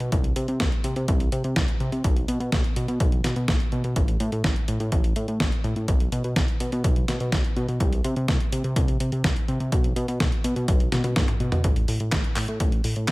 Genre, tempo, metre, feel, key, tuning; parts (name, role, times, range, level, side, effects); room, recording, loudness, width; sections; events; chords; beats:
italo disco; 125 BPM; 4/4; straight; A4 = 441 Hz
fat analog bass; bass; 0.0-13.1 s; A1 to C3; -26 LUFS; equal; tube saturation, tape echo
clean 12-bit digital drum machine; drums; 0.0-13.1 s; handclaps, hi-hat, snare drum, toms; -28 LUFS; equal; small room reverb
electronic kick drum; drums; 0.1-13.1 s; -24 LUFS; equal; small room reverb
little or no reverb; -21 LUFS; side -21 dB against mid
0.0-11.6 A section; 11.6-13.1 B section
drum fill 10.9-11.6
| 0.12 0.60 1.08 1.56 | 2.04 2.52 3.00 3.48 | 3.96 4.44 4.92 5.40 | 5.88 6.36 6.84 7.32 | 7.80 8.28 8.76 9.24 | 9.72 10.20 10.68 11.16 | 11.64 12.12 12.60 13.08